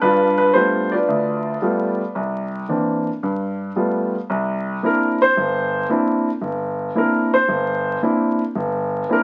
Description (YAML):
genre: solo jazz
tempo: 112 BPM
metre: 4/4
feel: swing 69% on 8ths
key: unclear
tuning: A4 = 440 Hz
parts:
  - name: warm concert grand piano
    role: solo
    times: 0.0-9.2 s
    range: G1 to D5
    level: -20 LUFS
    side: equal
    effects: none
room: light reverb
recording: very old 78 rpm record, vinyl crackle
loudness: -20 LUFS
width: mono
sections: 0.0-4.3 A section; 4.3-9.2 B section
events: grand piano solo 4.3-9.2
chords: 0.0 G9; 2.2 C9; 3.2 G9; 4.3 C9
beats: | 0.02 0.55 1.09 1.62 | 2.15 2.69 3.22 3.75 | 4.29 4.82 5.35 5.88 | 6.42 6.95 7.48 8.02 | 8.55 9.08